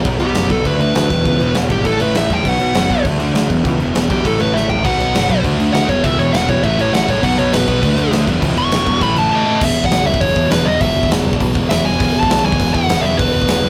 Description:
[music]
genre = punk rock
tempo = 201 BPM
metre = 4/4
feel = straight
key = unclear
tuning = A4 = 439 Hz
[part]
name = scooped high-gain guitar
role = riff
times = 0.0-0.1, 4.8-13.7 s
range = E2 to D4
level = -26 LUFS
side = equal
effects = distortion
[part]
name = sludgy distorted guitar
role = riff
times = 0.0-13.7 s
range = E2 to D4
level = -23 LUFS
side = equal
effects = overdrive
[part]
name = sludgy distorted guitar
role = riff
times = 0.0-9.6 s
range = E2 to D4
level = -23 LUFS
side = equal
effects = overdrive
[part]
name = big rock drum kit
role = drums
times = 0.0-13.6 s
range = crash cymbal, hi-hat, kick drum, snare drum, toms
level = -21 LUFS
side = equal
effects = none
[part]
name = growling picked electric bass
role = bass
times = 0.1-13.7 s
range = E1 to E2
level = -23 LUFS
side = equal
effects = overdrive
[part]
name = dark smooth lead guitar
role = melody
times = 0.2-13.7 s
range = G4 to C#6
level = -20 LUFS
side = equal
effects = overdrive
[sound]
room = moderate studio reverb, RT60 0.6 s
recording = rough rehearsal-room recording, warm saturation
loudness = -15 LUFS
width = mono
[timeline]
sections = 0.1-9.6 A section; 9.6-13.7 B section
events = lead electric guitar solo 0.1-9.6; drum fill 4.5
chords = 0.1 B5; 0.7 D5; 1.1 E; 1.9 A5; 2.5 B5; 3.0 D5; 3.5 E5; 4.2 A5; 4.8 B5; 5.4 D5; 5.9 E5; 6.6 A5; 7.2 B5; 7.8 D5; 8.3 E5; 9.0 A5; 9.6 E5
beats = | 0.06 0.36 0.66 0.95 | 1.25 1.55 1.85 2.15 | 2.45 2.75 3.05 3.35 | 3.65 3.95 4.24 4.54 | 4.84 5.14 5.44 5.74 | 6.04 6.33 6.63 6.93 | 7.23 7.53 7.83 8.12 | 8.42 8.72 9.02 9.32 | 9.61 9.91 10.21 10.51 | 10.80 11.10 11.40 11.70 | 12.00 12.29 12.59 12.89 | 13.19 13.49

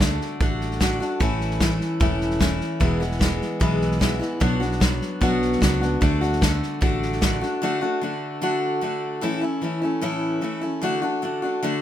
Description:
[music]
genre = honky-tonk and classic country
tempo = 150 BPM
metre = 4/4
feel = straight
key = unclear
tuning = A4 = 440 Hz
[part]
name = picked steel-string acoustic guitar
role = accompaniment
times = 0.0-11.8 s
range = E2 to F#4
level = -23 LUFS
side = left 1 dB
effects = none
[part]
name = fingered electric bass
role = bass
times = 0.0-7.4 s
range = E1 to D2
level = -26 LUFS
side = right 1 dB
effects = none
[part]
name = natural country drum kit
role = drums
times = 0.0-7.5 s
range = hi-hat, kick drum, snare drum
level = -23 LUFS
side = equal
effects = none
[sound]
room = light reverb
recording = minimal, uncompressed stereo recording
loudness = -20 LUFS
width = side -11 dB against mid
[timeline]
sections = 0.0-7.6 A section; 7.6-11.8 B section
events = none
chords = 0.0 D; 1.2 A; 2.8 E; 4.4 Bm; 6.0 D; 9.2 A; 10.8 D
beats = 0.01 0.41 0.81 | 1.21 1.61 2.01 2.41 | 2.81 3.21 3.61 4.01 | 4.41 4.81 5.21 5.61 | 6.01 6.42 6.82 7.22 | 7.62 8.02 8.42 8.82 | 9.22 9.63 10.03 10.43 | 10.83 11.23 11.63

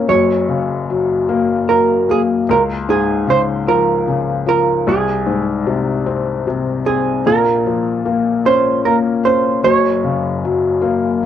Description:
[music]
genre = pop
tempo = 50 BPM (dotted quarters)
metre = 6/8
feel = straight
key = unclear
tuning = A4 = 439 Hz
[part]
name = hollow-body jazz guitar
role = melody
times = 0.0-11.3 s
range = Ab4 to Db5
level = -16 LUFS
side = right 6 dB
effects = none
[part]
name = felt-muted upright piano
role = accompaniment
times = 0.0-11.3 s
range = Gb1 to Db4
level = -16 LUFS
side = left 5 dB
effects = cassette tape
[sound]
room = moderate spring reverb, RT60 1.3 s, small room reverb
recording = home recording on cassette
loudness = -14 LUFS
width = side -10 dB against mid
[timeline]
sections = 0.0-11.3 A section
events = none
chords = 0.1 Gb; 2.5 Db; 4.9 Ab/C; 7.2 Bbm; 9.6 Gb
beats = | 0.09 1.28 | 2.48 3.67 | 4.86 6.05 | 7.24 8.44 | 9.63 10.82

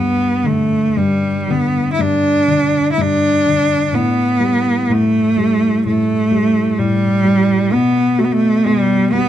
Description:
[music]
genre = celtic folk, Celtic slow air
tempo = 57-65 BPM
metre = 4/4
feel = rubato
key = G major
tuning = A4 = 439 Hz
[part]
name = clear cello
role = melody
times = 0.0-9.3 s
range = G3 to E4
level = -14 LUFS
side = right 2 dB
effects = none
[part]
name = felt-muted upright piano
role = accompaniment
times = 0.0-9.3 s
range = G2 to F#4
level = -18 LUFS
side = left 4 dB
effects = none
[sound]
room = light reverb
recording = close, detailed microphones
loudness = -13 LUFS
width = side -11 dB against mid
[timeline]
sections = 0.0-9.3 A section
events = none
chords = 0.0 G5; 3.9 Gadd9/A; 7.7 Gmaj7/B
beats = 0.97 1.99 2.98 | 3.94 4.90 5.86 6.78 | 7.72 8.66

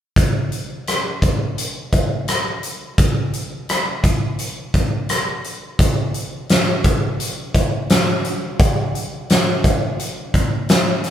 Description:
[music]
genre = rock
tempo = 86 BPM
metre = 4/4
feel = straight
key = none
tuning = none
[part]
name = huge arena drum kit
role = drums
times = 0.2-11.1 s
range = hi-hat, kick drum, rim click, snare drum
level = -17 LUFS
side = equal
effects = none
[sound]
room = light reverb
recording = band playing live in one room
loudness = -17 LUFS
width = side -10 dB against mid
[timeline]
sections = 0.2-11.1 A section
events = none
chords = none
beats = | 0.16 0.87 1.57 2.28 | 2.98 3.68 4.38 5.09 | 5.79 6.49 7.19 7.89 | 8.59 9.29 9.99 10.68

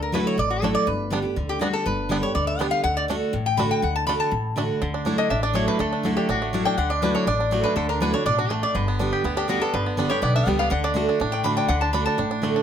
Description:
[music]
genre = bluegrass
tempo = 244 BPM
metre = 4/4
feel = straight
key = D major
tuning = A4 = 440 Hz
[part]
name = lap resonator guitar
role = melody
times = 0.0-12.4 s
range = F#4 to B5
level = -25 LUFS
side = left 3 dB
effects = none
[part]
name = picked steel-string acoustic guitar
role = accompaniment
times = 0.0-12.6 s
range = G2 to G4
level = -25 LUFS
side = right 1 dB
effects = none
[part]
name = upright bass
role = bass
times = 0.0-12.5 s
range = G1 to D2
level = -28 LUFS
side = equal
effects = none
[part]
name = bluegrass banjo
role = melody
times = 0.1-12.6 s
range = D3 to G4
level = -27 LUFS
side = right 4 dB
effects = none
[sound]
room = moderate small room reverb, RT60 0.5 s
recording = none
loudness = -20 LUFS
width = side -8 dB against mid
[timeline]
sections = 0.0-4.8 A section; 4.8-12.6 A section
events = none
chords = 0.0 Dadd9; 0.9 G; 2.8 D; 4.8 Dadd9; 8.7 G; 10.7 D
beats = 0.14 0.38 0.63 | 0.88 1.12 1.37 1.61 | 1.86 2.10 2.35 2.60 | 2.84 3.09 3.34 3.58 | 3.83 4.07 4.32 4.57 | 4.81 5.06 5.30 5.55 | 5.80 6.04 6.29 6.54 | 6.78 7.03 7.27 7.52 | 7.76 8.01 8.26 8.50 | 8.75 8.99 9.24 9.48 | 9.73 9.98 10.22 10.47 | 10.71 10.96 11.20 11.45 | 11.70 11.94 12.19 12.43

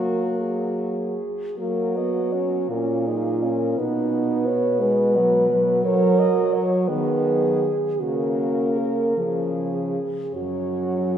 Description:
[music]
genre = classical, lyrical piece for horn quartet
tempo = 49-59 BPM (dotted quarters)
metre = 6/8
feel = rubato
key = F# major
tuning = A4 = 435 Hz
[part]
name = clear French horn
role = melody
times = 0.0-11.2 s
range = F#4 to D#5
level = -28 LUFS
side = left 4 dB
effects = none
[part]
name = mellow French horn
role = second line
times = 0.0-11.2 s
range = D#4 to C#5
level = -24 LUFS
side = right 4 dB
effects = none
[part]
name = mellow French horn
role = accompaniment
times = 0.0-11.2 s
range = E#3 to D#4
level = -26 LUFS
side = left 1 dB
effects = none
[part]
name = warm French horn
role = bass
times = 0.0-11.2 s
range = F#2 to F#3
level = -27 LUFS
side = right 1 dB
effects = none
[sound]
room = wet church reverb, RT60 3.4 s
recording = heard from further back in the room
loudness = -20 LUFS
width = side -9 dB against mid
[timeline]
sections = 0.0-1.6 A section; 1.6-11.2 A section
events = none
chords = 0.0 F#; 3.8 B; 5.8 F#; 6.9 B/D#; 8.0 F#/C#; 9.2 C#; 10.3 F#5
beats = 0.40 | 1.59 2.70 | 3.78 4.81 | 5.84 6.89 | 8.01 9.18 | 10.35

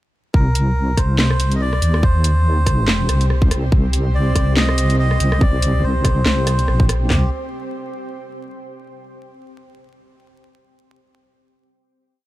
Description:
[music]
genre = deep dubstep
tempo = 142 BPM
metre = 4/4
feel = swing 56% on 16ths, half-time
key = C minor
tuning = A4 = 441 Hz
[part]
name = melodica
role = melody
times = 0.3-7.3 s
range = G4 to Eb5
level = -25 LUFS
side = right 1 dB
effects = dub echo
[part]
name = granular cloud pad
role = sustained chords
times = 1.5-7.3 s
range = C4 to C5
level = -29 LUFS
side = right 1 dB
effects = built-in reverb
[part]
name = deep soft wobble bass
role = bass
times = 0.3-7.3 s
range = Bb1 to Eb2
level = -16 LUFS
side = equal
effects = chorus
[part]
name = garage drum kit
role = drums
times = 0.3-7.2 s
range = handclaps, kick drum, snare drum, toms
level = -16 LUFS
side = equal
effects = none
[part]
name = garage drum kit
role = drums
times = 0.6-7.0 s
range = handclaps, hi-hat, rim click, snare drum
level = -22 LUFS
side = equal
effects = none
[sound]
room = little or no reverb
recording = vinyl crackle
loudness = -14 LUFS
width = side -16 dB against mid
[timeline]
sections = 0.3-7.1 drop; 7.1-8.8 final chord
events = drop 0.3-7.1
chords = 0.3 Cm; 7.1 Csus2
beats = | 0.34 0.76 1.19 1.61 | 2.03 2.45 2.88 3.30 | 3.72 4.14 4.57 4.99 | 5.41 5.83 6.26 6.68 | 7.10

